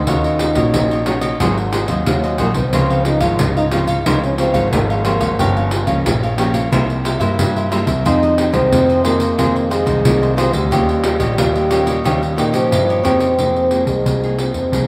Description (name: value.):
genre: samba and choro.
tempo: 90 BPM.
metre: 4/4.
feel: straight.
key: unclear.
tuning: A4 = 436 Hz.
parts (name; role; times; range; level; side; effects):
breathy trombone; melody; 0.0-14.9 s; Eb3 to F4; -21 LUFS; equal; none.
cavaquinho; accompaniment; 0.0-13.4 s; Eb4 to F5; -26 LUFS; equal; none.
nylon-string guitar; accompaniment; 0.0-14.9 s; F2 to Ab4; -26 LUFS; equal; none.
warm grand piano; bass; 0.0-14.9 s; G1 to Bb2; -22 LUFS; equal; none.
pandeiro; percussion; 0.1-14.9 s; none; -23 LUFS; equal; none.
room: moderate cathedral reverb, RT60 5.8 s.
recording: in a vast, echoing space.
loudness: -16 LUFS.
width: mono.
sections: 0.0-13.4 A section; 13.4-14.9 B section.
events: none.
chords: 0.1 Ebm7; 1.4 Ab7; 2.7 Dbmaj7; 5.4 Gm7b5; 6.7 C7; 8.1 Fm7; 10.7 Eb7; 13.4 Fm7.